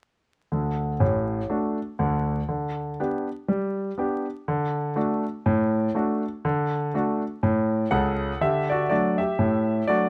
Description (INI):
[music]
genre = jazz, stride piano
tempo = 122 BPM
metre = 4/4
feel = swing 58% on 8ths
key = D major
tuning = A4 = 440 Hz
[part]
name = clear concert grand piano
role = solo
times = 0.5-10.1 s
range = A1 to F#5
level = -25 LUFS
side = equal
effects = none
[sound]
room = light reverb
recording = close, detailed microphones, vinyl crackle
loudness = -25 LUFS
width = mono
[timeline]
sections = 0.5-8.4 A section; 8.4-10.1 B section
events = none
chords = 0.5 D; 2.5 G/D; 4.5 D